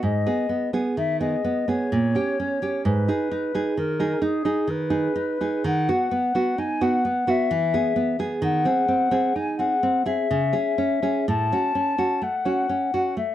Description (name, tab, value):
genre	romantic duo for flute and classical guitar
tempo	64 BPM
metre	3/4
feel	rubato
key	unclear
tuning	A4 = 440 Hz
part	mellow hollow silver concert flute	melody	0.0-13.3 s	G#4 to A5	-24 LUFS	left 4 dB	slapback echo
part	nylon-string guitar	accompaniment	0.0-13.3 s	G#2 to G#4	-23 LUFS	right 3 dB	none
room	light reverb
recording	dry, close 1970s-style studio recording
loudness	-21 LUFS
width	side -12 dB against mid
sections	0.0-13.3 A section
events	none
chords	0.1 G#m; 1.9 Gdim/Bb; 2.9 G#m; 5.7 B/D#; 7.5 E; 8.4 G#7/D#; 10.3 C#m; 11.3 F#m/A